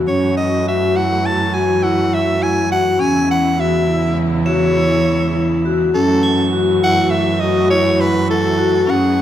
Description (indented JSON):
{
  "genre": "contemporary instrumental, chamber music in an uneven meter",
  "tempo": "102 BPM",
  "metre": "5/4",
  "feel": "straight",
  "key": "F# minor",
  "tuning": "A4 = 442 Hz",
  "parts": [
    { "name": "warm symphonic string section", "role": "sustained chords", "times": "0.0-9.2 s", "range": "C#3 to G#4", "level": "-23 LUFS", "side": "right 1 dB", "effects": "none" },
    { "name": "vibraphone with medium mallets", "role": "arpeggios", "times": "0.0-9.2 s", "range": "C#4 to F#4", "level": "-17 LUFS", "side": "left 4 dB", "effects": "none" },
    { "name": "rich cello", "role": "bass", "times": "0.0-9.2 s", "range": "E2 to F#2", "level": "-20 LUFS", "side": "right 4 dB", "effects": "none" },
    { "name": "raspy soprano saxophone", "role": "melody", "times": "0.1-9.2 s", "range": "A4 to A5", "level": "-19 LUFS", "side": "right 1 dB", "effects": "none" },
    { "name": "crotales", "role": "texture", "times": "4.5-7.6 s", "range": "E7 to G#7", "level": "-29 LUFS", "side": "right 3 dB", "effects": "none" }
  ],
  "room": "moderate recital hall reverb, RT60 1.4 s",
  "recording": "minimal, uncompressed stereo recording",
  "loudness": "-13 LUFS",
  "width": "side -11 dB against mid",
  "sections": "0.0-9.2 A section",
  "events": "none",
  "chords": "0.1 F#m7; 3.0 E6; 5.9 F#m9"
}